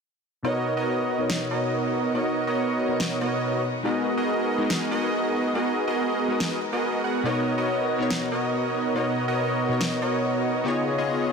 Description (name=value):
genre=future bass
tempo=141 BPM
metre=4/4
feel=half-time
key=B major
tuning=A4 = 442 Hz
part: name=glassy digital keys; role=accompaniment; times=0.4-11.3 s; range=B2 to C#5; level=-29 LUFS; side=left 3 dB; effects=chorus, vintage 12-bit sampler grit, low-pass filter, ping-pong delay
part: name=big bright polysynth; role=riff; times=0.4-11.3 s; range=B3 to F#5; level=-24 LUFS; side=right 1 dB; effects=ping-pong delay
part: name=electronic snare drum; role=drums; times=1.3-9.9 s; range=none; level=-34 LUFS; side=equal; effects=none
room=moderate shimmer reverb, RT60 6.8 s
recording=dense, heavily limited modern master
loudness=-23 LUFS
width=side -5 dB against mid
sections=0.4-11.3 A section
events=filter sweep on synth keys 0.4-11.3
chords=0.4 Bmaj9; 3.6 G#m9; 7.3 Bmaj9; 10.7 C#9